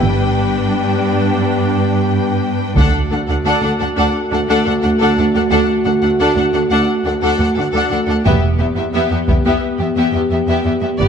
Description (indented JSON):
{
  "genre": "cinematic, epic orchestral film score",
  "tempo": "88 BPM",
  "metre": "4/4",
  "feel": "straight",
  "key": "D major",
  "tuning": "A4 = 440 Hz",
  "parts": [
    { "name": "warm symphonic violin section", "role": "melody", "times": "0.0-11.1 s", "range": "D5 to G5", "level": "-22 LUFS", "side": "left 5 dB", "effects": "none" },
    { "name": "rich symphonic violin section", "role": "second line", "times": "0.0-11.1 s", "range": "G4 to B4", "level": "-23 LUFS", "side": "left 4 dB", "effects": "none" },
    { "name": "clear symphonic viola section", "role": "accompaniment", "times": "0.0-11.1 s", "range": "B3 to D4", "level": "-22 LUFS", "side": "right 2 dB", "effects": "none" },
    { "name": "dark French horn section", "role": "sustained chords", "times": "0.0-11.1 s", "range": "A3 to G4", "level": "-19 LUFS", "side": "left 2 dB", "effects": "none" },
    { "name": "clear symphonic double bass section", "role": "bass", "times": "0.0-11.1 s", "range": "E1 to D2", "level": "-19 LUFS", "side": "right 3 dB", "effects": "none" },
    { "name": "rich symphonic cello section", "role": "bass", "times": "0.0-11.1 s", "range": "D2 to G2", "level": "-19 LUFS", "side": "right 4 dB", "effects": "none" },
    { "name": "taiko ensemble", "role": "drums", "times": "2.8-4.1, 8.3-9.6 s", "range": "none", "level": "-18 LUFS", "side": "equal", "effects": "none" }
  ],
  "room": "moderate scoring stage reverb, RT60 1.6 s",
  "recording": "dark, warm production",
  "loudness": "-13 LUFS",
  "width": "side -7 dB against mid",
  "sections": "0.0-11.1 A section",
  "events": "build-up 0.0-11.1",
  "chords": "0.0 G; 2.8 D; 8.3 Em"
}